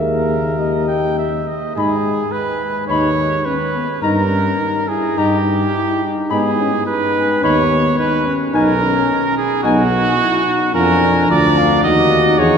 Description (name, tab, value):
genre	classical, brass quintet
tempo	107 BPM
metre	4/4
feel	rubato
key	G# minor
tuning	A4 = 438 Hz
part	warm cornet	melody	0.0-12.6 s	D#5 to B5	-24 LUFS	left 4 dB	none
part	clear trumpet	second line	0.0-12.6 s	F#4 to G5	-18 LUFS	right 3 dB	none
part	dark French horn	accompaniment	0.0-12.6 s	B3 to G#4	-20 LUFS	left 3 dB	none
part	warm trombone	accompaniment	0.0-12.6 s	A#3 to E#4	-23 LUFS	right 2 dB	none
part	mellow tuba	bass	0.0-12.6 s	B1 to G#2	-20 LUFS	equal	none
room	wet cathedral reverb, RT60 6.2 s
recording	heard from further back in the room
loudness	-14 LUFS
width	side -6 dB against mid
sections	0.0-1.8 A section; 1.8-12.6 B section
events	none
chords	0.0 D#sus4; 0.6 D#; 1.8 G#m; 4.0 D#/G; 6.3 G#m; 8.5 G#m/B; 10.8 A#7/E#; 11.8 D#m